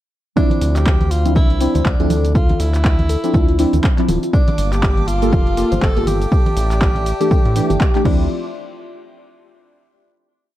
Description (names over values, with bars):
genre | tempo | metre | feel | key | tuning
deep house | 121 BPM | 4/4 | swing 58% on 16ths | D minor | A4 = 440 Hz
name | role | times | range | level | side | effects
breathy tenor saxophone | melody | 0.4-8.3 s | D4 to A4 | -24 LUFS | right 1 dB | vintage 12-bit sampler grit, tape echo
deep mellow chord stab | stabs | 0.4-8.3 s | E3 to A4 | -20 LUFS | equal | chorus, sidechain pumping
electronic kick drum | drums | 0.4-8.2 s | none | -15 LUFS | equal | vintage 12-bit sampler grit
punchy analog drum machine | drums | 0.4-8.2 s | cabasa, crash cymbal, handclaps, hi-hat | -28 LUFS | equal | vintage 12-bit sampler grit
congas | percussion | 0.5-8.2 s | none | -25 LUFS | right 1 dB | sidechain pumping on perc
round analog bass | bass | 0.6-8.3 s | D1 to A2 | -18 LUFS | equal | sidechain pumping
bell-like FM electric piano | melody | 1.8-8.1 s | F4 to C5 | -27 LUFS | left 1 dB | chorus, tremolo, tape echo
hollow soft pad | sustained chords | 4.3-8.3 s | Bb3 to C6 | -30 LUFS | left 1 dB | chorus, sidechain pumping
string machine, violins | texture | 4.3-8.3 s | D6 | -36 LUFS | right 1 dB | ensemble chorus, sidechain pumping
room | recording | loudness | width
little or no reverb | dark, warm production | -14 LUFS | side -14 dB against mid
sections
0.4-8.3 drop; 8.3-10.3 final hit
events
drop 0.4-8.3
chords
0.4 Dm9; 4.3 Gm9; 6.3 A7sus4; 8.1 Dm9; 8.3 N.C.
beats
| 0.37 0.86 1.36 1.85 | 2.35 2.85 3.34 3.84 | 4.33 4.83 5.33 5.82 | 6.32 6.81 7.31 7.80 | 8.30